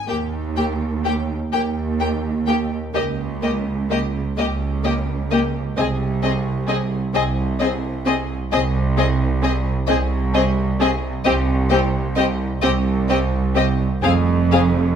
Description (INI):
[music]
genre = classical, slow romantic movement for string orchestra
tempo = 41-45 BPM (dotted quarters)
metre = 12/8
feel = rubato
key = Eb major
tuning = A4 = 440 Hz
[part]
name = rich studio violin section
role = melody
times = 0.0-14.6 s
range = Eb5 to G5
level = -27 LUFS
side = left 6 dB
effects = none
[part]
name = rich studio violin section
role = second line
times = 0.1-14.6 s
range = G4 to Ab4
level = -26 LUFS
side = left 4 dB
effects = none
[part]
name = rich studio viola section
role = accompaniment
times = 0.1-14.6 s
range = Bb3 to C4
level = -24 LUFS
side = left 1 dB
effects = none
[part]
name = rich studio cello section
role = bass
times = 0.1-15.0 s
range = C2 to F2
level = -23 LUFS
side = right 4 dB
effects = none
[part]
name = rich studio double bass section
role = bass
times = 0.1-15.0 s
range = F1 to Eb2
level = -23 LUFS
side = right 3 dB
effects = none
[sound]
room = moderate recital hall reverb, RT60 1.4 s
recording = minimal, uncompressed stereo recording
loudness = -18 LUFS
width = side -8 dB against mid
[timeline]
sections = 0.1-15.0 A section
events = none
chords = 0.1 Eb; 2.9 Eb7(no3)/Db (rootless); 5.8 N.C.; 14.0 F5